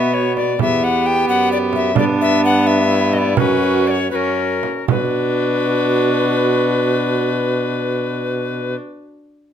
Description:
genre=classical, renaissance-style consort dance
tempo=77-88 BPM (dotted quarters)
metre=6/8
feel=straight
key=B harmonic minor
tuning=A4 = 441 Hz
part: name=bright alto recorder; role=melody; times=0.0-8.8 s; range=A#4 to G5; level=-20 LUFS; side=left 6 dB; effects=none
part: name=warm viola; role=second line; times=0.0-8.7 s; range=D4 to G4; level=-22 LUFS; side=right 7 dB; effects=none
part: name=warm viola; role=accompaniment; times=0.0-8.8 s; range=B3 to D4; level=-21 LUFS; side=left 2 dB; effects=none
part: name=warm trombone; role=bass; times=0.0-8.8 s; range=E2 to B2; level=-21 LUFS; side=right 2 dB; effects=none
part: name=frame drum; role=percussion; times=0.4-5.1 s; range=none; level=-21 LUFS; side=right 9 dB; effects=none
room=light reverb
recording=close, detailed microphones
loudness=-15 LUFS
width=side -9 dB against mid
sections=0.0-4.9 A section; 4.9-8.0 B section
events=slowing down 1.3-4.9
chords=0.0 Bm; 0.6 Em; 2.0 G; 3.4 F#sus4; 4.9 Bm

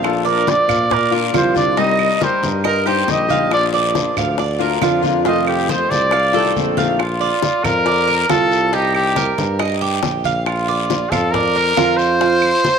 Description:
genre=latin, Cuban son and guajira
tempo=138 BPM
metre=4/4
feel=straight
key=Bb major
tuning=A4 = 440 Hz
part: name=clear trumpet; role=melody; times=0.0-12.8 s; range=F4 to Eb5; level=-18 LUFS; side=equal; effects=none
part: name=nylon-string guitar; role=accompaniment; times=0.0-7.0 s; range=C3 to G4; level=-22 LUFS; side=left 14 dB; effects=none
part: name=Cuban tres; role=arpeggios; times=0.0-12.8 s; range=Eb4 to F5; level=-19 LUFS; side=right 9 dB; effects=none
part: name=warm tuba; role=bass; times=0.0-12.5 s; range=Bb1 to Bb2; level=-23 LUFS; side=left 1 dB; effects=none
part: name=bongos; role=percussion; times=0.0-12.8 s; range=none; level=-26 LUFS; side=left 12 dB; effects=none
part: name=claves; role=percussion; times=0.0-12.6 s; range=none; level=-29 LUFS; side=right 14 dB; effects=none
part: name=congas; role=percussion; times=0.0-12.8 s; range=none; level=-27 LUFS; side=left 2 dB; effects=none
part: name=guiro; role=percussion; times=0.0-12.8 s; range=none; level=-30 LUFS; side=left 14 dB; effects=none
room=moderate plate reverb, RT60 3.0 s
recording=1960s-style stereo with parts hard left and right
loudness=-14 LUFS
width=side -6 dB against mid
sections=0.0-7.0 A section; 7.0-12.8 B section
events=trumpet solo 0.0-7.0; drum fill 6.3-7.0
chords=0.0 Bb; 1.8 Cm7; 3.5 Bb; 5.3 F7; 7.0 Bb; 8.7 Cm7; 10.5 Bb; 12.2 F5

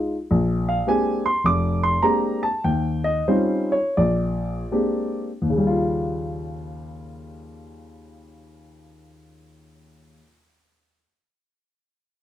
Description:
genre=solo jazz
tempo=72-109 BPM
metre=4/4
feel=swing 67% on 8ths, rubato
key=Eb mixolydian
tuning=A4 = 440 Hz
part: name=dark grand piano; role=solo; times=0.0-10.3 s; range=F1 to D6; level=-20 LUFS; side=equal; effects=none
room=light reverb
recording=dark, warm production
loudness=-20 LUFS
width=side -11 dB against mid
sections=0.0-5.5 A section; 5.5-8.7 B section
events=grand piano solo 0.0-5.5; slowing down 0.3-5.5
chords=0.3 Bb13; 2.6 Eb13; 4.0 Bb13; 5.5 Eb9

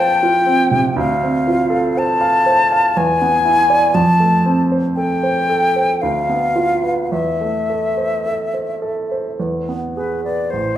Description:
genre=classical, romantic duo for flute and grand piano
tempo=51-61 BPM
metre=3/4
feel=rubato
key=A minor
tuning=A4 = 441 Hz
part: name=concert flute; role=melody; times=0.0-10.8 s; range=B4 to A5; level=-16 LUFS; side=left 2 dB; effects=none
part: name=warm baby grand piano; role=accompaniment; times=0.0-10.8 s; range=A1 to F5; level=-18 LUFS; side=right 2 dB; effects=none
room=wet recital hall reverb, RT60 1.3 s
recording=recorded in a church or concert hall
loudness=-14 LUFS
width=side -11 dB against mid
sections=0.0-10.5 A section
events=none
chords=0.0 F; 1.0 Dm7; 3.0 E7; 4.0 F; 6.0 Bdim/D; 7.1 Am/E; 9.4 E

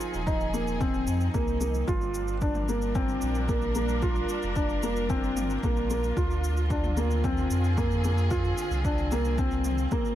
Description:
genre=piano and strings electronica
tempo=112 BPM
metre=4/4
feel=straight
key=unclear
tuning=A4 = 444 Hz
part: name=warm chamber string section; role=sustained chords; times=0.0-10.2 s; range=D3 to Bb4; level=-35 LUFS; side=equal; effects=none
part: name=felt-muted upright piano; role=riff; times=0.0-10.1 s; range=Bb3 to F4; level=-29 LUFS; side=left 1 dB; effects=digital delay
part: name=electronic shaker and toms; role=drums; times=0.0-10.2 s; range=none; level=-42 LUFS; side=right 1 dB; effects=overdrive
part: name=warm sub bass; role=bass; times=0.1-9.9 s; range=Eb1 to F2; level=-29 LUFS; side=equal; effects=sidechain pumping
part: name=electronic kick drum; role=drums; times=0.3-10.0 s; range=none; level=-30 LUFS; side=equal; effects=overdrive
room=light reverb, studio ambience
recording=dark, warm production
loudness=-25 LUFS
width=side -12 dB against mid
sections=0.0-10.2 A section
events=none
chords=0.0 Fm7; 1.9 Gm7; 6.2 Dm7b5

